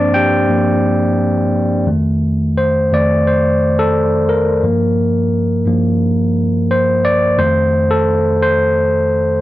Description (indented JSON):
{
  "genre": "soul",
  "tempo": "87 BPM",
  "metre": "4/4",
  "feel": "swing 54% on 16ths",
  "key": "unclear",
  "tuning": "A4 = 439 Hz",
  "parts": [
    { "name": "overdriven tine electric piano", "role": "solo", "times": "0.0-9.4 s", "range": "F2 to G5", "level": "-12 LUFS", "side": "equal", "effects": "none" }
  ],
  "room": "digital ambience",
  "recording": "dry, close 1970s-style studio recording",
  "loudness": "-12 LUFS",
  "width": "side -15 dB against mid",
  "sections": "0.0-1.9 A section; 1.9-9.4 B section",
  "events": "tine electric piano solo 0.0-1.9, 1.9-9.4",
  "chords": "0.0 Gm7; 1.9 F7; 4.6 Gm7; 7.4 F7",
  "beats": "0.50 1.19 | 1.88 2.57 3.26 3.94 | 4.63 5.32 6.01 6.70 | 7.38 8.07 8.76"
}